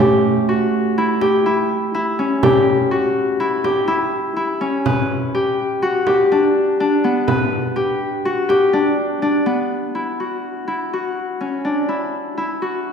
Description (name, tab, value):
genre	contemporary instrumental, chamber music in an uneven meter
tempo	124 BPM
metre	5/4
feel	straight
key	unclear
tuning	A4 = 440 Hz
part	Celtic harp	arpeggios	0.0-12.9 s	A3 to B4	-16 LUFS	left 1 dB	none
part	frame drum	percussion	1.2-9.3 s	none	-23 LUFS	right 2 dB	none
room	wet concert hall reverb, RT60 1.7 s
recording	heard from further back in the room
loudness	-16 LUFS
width	side -6 dB against mid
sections	0.0-9.7 A section; 9.7-12.9 B section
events	none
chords	0.0 Emadd9; 4.9 G